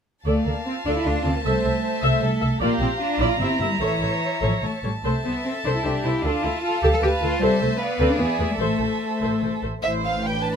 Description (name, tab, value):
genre	quick classical-period movement for string orchestra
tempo	143-156 BPM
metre	3/4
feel	rubato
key	D minor, A minor from 5.0 s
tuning	A4 = 439 Hz
part	rich studio violin section	second line	0.2-10.6 s	B4 to Bb5	-28 LUFS	equal	none
part	dark symphonic viola section	accompaniment	0.3-10.6 s	D4 to E5	-26 LUFS	equal	none
part	warm studio cello section	bass	0.3-10.6 s	A2 to A4	-25 LUFS	left 1 dB	none
part	warm symphonic double bass section	bass	0.3-10.6 s	G1 to E2	-26 LUFS	right 1 dB	none
part	warm chamber violin section	melody	0.7-10.5 s	E4 to A5	-28 LUFS	right 1 dB	none
room	light reverb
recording	close, detailed microphones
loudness	-20 LUFS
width	side -7 dB against mid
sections	0.3-9.8 A section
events	none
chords	0.3 Dm; 1.4 Am/C; 2.6 Bb; 3.4 Edim; 3.8 A; 5.0 Am/C; 6.2 Dm; 7.4 Am; 7.8 Bm7b5; 8.2 E7; 8.6 Am